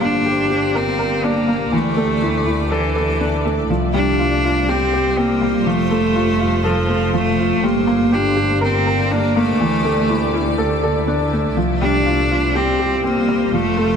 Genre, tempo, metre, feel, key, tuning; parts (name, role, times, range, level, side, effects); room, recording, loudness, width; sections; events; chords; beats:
electronica; 122 BPM; 4/4; straight; G dorian; A4 = 440 Hz
clear cello; melody; 0.0-14.0 s; E3 to D4; -19 LUFS; equal; ping-pong delay
granular cloud pad; sustained chords; 0.0-14.0 s; G3 to D5; -25 LUFS; right 1 dB; built-in reverb
felt-muted upright piano; riff; 0.0-14.0 s; E3 to Bb4; -20 LUFS; left 1 dB; ping-pong delay
muted chamber double bass section; bass; 0.0-14.0 s; F1 to D2; -23 LUFS; right 1 dB
moderate scoring stage reverb, RT60 1.6 s, small room ambience; -15 LUFS; side -7 dB against mid
0.0-14.0 A section
0.0 Gm; 1.7 Dsus2; 3.7 Csus4; 5.7 F; 7.6 Gm; 9.6 Dsus2; 11.6 Csus4
0.26 0.75 1.24 | 1.73 2.23 2.72 3.21 | 3.70 4.19 4.68 5.18 | 5.67 6.16 6.65 7.14 | 7.63 8.13 8.62 9.11 | 9.60 10.09 10.59 11.08 | 11.57 12.06 12.55 13.04 | 13.54